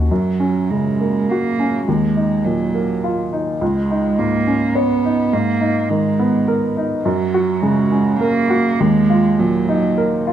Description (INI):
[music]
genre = neoclassical piano and strings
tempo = 103 BPM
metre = 3/4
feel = rubato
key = F# major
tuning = A4 = 439 Hz
[part]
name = clear upright piano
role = accompaniment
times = 0.0-10.3 s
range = C#2 to C#5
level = -18 LUFS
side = left 1 dB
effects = none
[part]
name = dark cello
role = second line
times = 0.1-10.3 s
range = F#3 to B3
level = -18 LUFS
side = right 4 dB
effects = none
[sound]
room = light reverb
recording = close, detailed microphones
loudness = -15 LUFS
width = side -10 dB against mid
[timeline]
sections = 0.1-10.3 A section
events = none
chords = 0.1 F#; 1.9 D#madd9; 3.6 C#sus2; 5.3 G#madd9; 7.0 F#; 8.8 D#madd9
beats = | 0.10 0.69 1.28 | 1.86 2.44 3.03 | 3.61 4.18 4.75 | 5.32 5.89 6.47 | 7.05 7.62 8.20 | 8.79 9.38 9.97